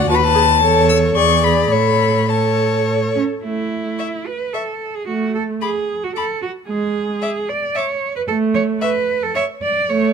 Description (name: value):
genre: quick classical-period movement for string quartet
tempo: 111 BPM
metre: 3/4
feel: rubato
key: A major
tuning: A4 = 440 Hz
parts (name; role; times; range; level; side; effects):
- warm violin; melody; 0.0-9.5 s; A5 to E6; -18 LUFS; left 10 dB; none
- rich violin; second line; 0.0-9.4 s; B4 to B5; -20 LUFS; left 5 dB; none
- warm viola; accompaniment; 0.0-10.1 s; G#3 to A4; -20 LUFS; right 3 dB; none
- rich cello; bass; 0.0-10.1 s; D#2 to D5; -20 LUFS; right 4 dB; none
room: light reverb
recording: close, detailed microphones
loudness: -16 LUFS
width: side -6 dB against mid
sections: 0.0-3.4 A section; 3.4-10.1 A section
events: none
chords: 0.1 B7/D#; 0.6 A/E; 1.2 E7; 1.7 A; 3.4 A5; 5.1 B7(no3)/A (rootless); 6.7 E7/G# (rootless); 8.3 N.C.